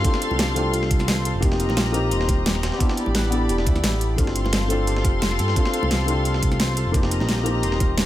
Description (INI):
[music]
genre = liquid drum and bass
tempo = 174 BPM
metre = 4/4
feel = straight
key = G minor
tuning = A4 = 440 Hz
[part]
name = felt-muted upright piano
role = accompaniment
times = 0.0-8.1 s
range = A3 to G4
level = -26 LUFS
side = left 1 dB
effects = tape echo
[part]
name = dark studio string section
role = sustained chords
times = 0.0-8.1 s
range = G4 to C6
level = -28 LUFS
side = left 3 dB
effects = sidechain pumping
[part]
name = concert harp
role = arpeggios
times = 0.0-8.1 s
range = E4 to D5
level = -30 LUFS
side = left 1 dB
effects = tape echo
[part]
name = smooth gliding synth bass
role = bass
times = 0.0-8.1 s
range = Eb1 to G2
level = -24 LUFS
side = equal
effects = none
[part]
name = breakbeat sampler-style drum kit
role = drums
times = 0.0-8.1 s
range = hi-hat, snare drum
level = -31 LUFS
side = equal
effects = high-pass filter on hats, small room ambience, high-pass filter on snare
[part]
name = electronic kick drum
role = drums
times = 0.0-7.9 s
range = none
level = -21 LUFS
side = equal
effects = small room ambience
[part]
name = pop drum kit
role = drums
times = 0.0-8.0 s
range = hi-hat, snare drum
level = -26 LUFS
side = equal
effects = small room ambience
[part]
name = bongos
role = percussion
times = 0.3-7.9 s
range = none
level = -33 LUFS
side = right 2 dB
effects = none
[sound]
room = small room ambience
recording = none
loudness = -19 LUFS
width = side -14 dB against mid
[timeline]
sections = 0.0-8.1 A section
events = none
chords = 0.0 G9sus4; 1.4 F9sus4; 2.8 A9sus4; 4.2 G9sus4; 6.9 F9sus4